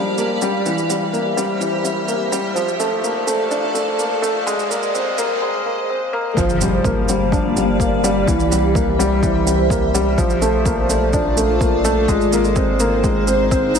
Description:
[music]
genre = piano and strings electronica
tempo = 126 BPM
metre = 4/4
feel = straight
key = G dorian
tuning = A4 = 440 Hz
[part]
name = granular cloud pad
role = sustained chords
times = 0.0-13.8 s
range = Bb3 to F5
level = -22 LUFS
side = equal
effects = built-in reverb, sidechain pumping
[part]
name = felt-muted upright piano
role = riff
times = 0.0-13.8 s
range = E3 to Eb4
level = -18 LUFS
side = left 1 dB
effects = ping-pong delay
[part]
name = riser and impact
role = sound effects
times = 2.0-8.3 s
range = none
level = -30 LUFS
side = right 1 dB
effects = none
[part]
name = shaker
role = drums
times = 0.2-13.8 s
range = none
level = -27 LUFS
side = right 6 dB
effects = overdrive, high-pass filter on perc
[part]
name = round analog bass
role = bass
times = 6.4-13.8 s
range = G1 to C2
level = -23 LUFS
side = equal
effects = sidechain pumping
[part]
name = electronic kick drum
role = drums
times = 6.4-13.6 s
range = none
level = -22 LUFS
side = equal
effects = overdrive
[sound]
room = moderate echo chamber reverb, RT60 1.6 s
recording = high-pass filter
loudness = -16 LUFS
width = side -6 dB against mid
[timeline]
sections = 0.0-6.4 A section; 6.4-13.8 B section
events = build-up 0.0-6.4; riser 2.0-5.4; drop 6.4-13.8; impact 6.4-8.3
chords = 0.0 Gm7; 0.7 C7; 2.6 Bbmaj7; 4.5 Abadd9; 6.4 Gm7; 8.3 C7; 10.2 Bbmaj7; 12.1 Abadd9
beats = 0.18 | 0.66 1.14 1.61 2.09 | 2.57 3.04 3.52 4.00 | 4.47 4.95 5.42 5.90 | 6.38 6.85 7.33 7.80 | 8.28 8.76 9.23 9.71 | 10.19 10.66 11.14 11.61 | 12.09 12.57 13.04 13.52

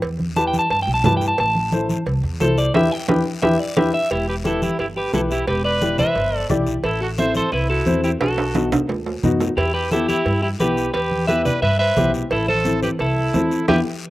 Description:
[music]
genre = latin, cumbia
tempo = 176 BPM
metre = 4/4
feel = straight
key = E minor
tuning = A4 = 440 Hz
[part]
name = upright bass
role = bass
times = 0.0-13.8 s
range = E1 to G2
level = -25 LUFS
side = equal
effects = none
[part]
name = cowbell and timbales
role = percussion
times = 0.0-13.8 s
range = none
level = -25 LUFS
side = right 3 dB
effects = slapback echo
[part]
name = guiro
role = percussion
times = 0.0-13.8 s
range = none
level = -38 LUFS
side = left 5 dB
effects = none
[part]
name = congas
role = percussion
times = 0.2-13.8 s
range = none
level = -25 LUFS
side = equal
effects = none
[part]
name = clean electric guitar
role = melody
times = 0.4-13.8 s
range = E4 to A5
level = -21 LUFS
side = equal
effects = spring reverb
[part]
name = warm upright piano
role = accompaniment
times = 0.4-13.8 s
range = B3 to D5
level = -22 LUFS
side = left 2 dB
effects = none
[part]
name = bright trumpet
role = second line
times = 4.1-13.8 s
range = E4 to C5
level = -27 LUFS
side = right 4 dB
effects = slapback echo
[sound]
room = little or no reverb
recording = recorded outdoors, with no room sound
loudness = -17 LUFS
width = side -16 dB against mid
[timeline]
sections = 0.0-4.1 A section; 4.1-14.1 B section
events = clean electric guitar solo 0.0-4.1; band accent 2.8-4.1, 13.7-14.1; drum fill 8.2-9.6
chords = 0.0 Em; 1.4 Am; 2.8 Em; 6.8 Am; 8.2 B7; 9.6 Em; 12.3 Am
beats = | 0.02 0.36 0.70 1.05 | 1.39 1.73 2.07 2.41 | 2.75 3.09 3.43 3.77 | 4.11 4.45 4.79 5.13 | 5.48 5.82 6.16 6.50 | 6.84 7.18 7.53 7.87 | 8.21 8.55 8.89 9.23 | 9.58 9.92 10.26 10.60 | 10.94 11.29 11.63 11.97 | 12.31 12.66 13.00 13.34 | 13.69

